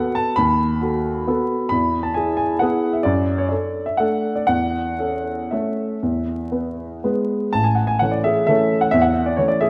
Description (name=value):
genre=classical, piano waltz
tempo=113-144 BPM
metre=3/4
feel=rubato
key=A major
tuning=A4 = 440 Hz
part: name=warm grand piano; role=solo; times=0.0-9.7 s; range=A1 to B5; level=-20 LUFS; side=equal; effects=none
room=moderate concert hall reverb, RT60 1.7 s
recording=worn, warbling old tape, cassette tape, vinyl crackle, warbly pitch drift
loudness=-20 LUFS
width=mono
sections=0.0-7.5 A section; 7.5-9.7 B section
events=none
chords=0.0 B7/D#; 1.7 E; 3.1 D/F#; 4.5 A/E; 6.0 E; 7.5 A